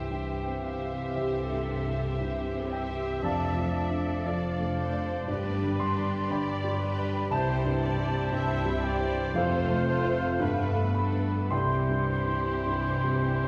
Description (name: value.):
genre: classical.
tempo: 51-60 BPM.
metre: 4/4.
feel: rubato.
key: C major.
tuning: A4 = 440 Hz.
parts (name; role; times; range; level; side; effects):
warm grand piano; melody; 0.0-13.5 s; C2 to C6; -33 LUFS; equal; none.
warm symphonic violin section; melody; 0.0-13.5 s; B4 to E5; -46 LUFS; equal; none.
clear clarinet; second line; 0.0-13.5 s; D4 to G4; -41 LUFS; equal; none.
concert flute; second line; 0.0-13.5 s; E5 to C6; -39 LUFS; equal; none.
rich symphonic violin section; second line; 0.0-13.5 s; D4 to C5; -45 LUFS; equal; none.
warm oboe; second line; 0.0-13.5 s; B4 to E5; -42 LUFS; equal; none.
mellow bassoon; accompaniment; 0.0-13.5 s; E3 to A3; -41 LUFS; equal; none.
rich symphonic cello section; bass; 0.1-13.5 s; F2 to C3; -37 LUFS; equal; none.
warm symphonic double bass section; bass; 0.1-13.5 s; F1 to C2; -38 LUFS; equal; none.
rich symphonic viola section; accompaniment; 1.2-13.5 s; G4 to E5; -41 LUFS; equal; none.
warm French horn section; sustained chords; 1.2-13.5 s; E3 to G4; -42 LUFS; equal; none.
room: wet recital hall reverb, RT60 1.7 s.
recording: heard from further back in the room.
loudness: -29 LUFS.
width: mono.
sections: 0.0-13.5 A section.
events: none.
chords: 0.0 C; 3.2 Dm/F; 5.3 G; 7.3 C; 9.4 F; 10.4 G9; 11.5 C.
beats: 0.11 1.17 2.22 | 3.23 4.25 5.28 6.31 | 7.32 8.33 9.35 10.41 | 11.52 12.67.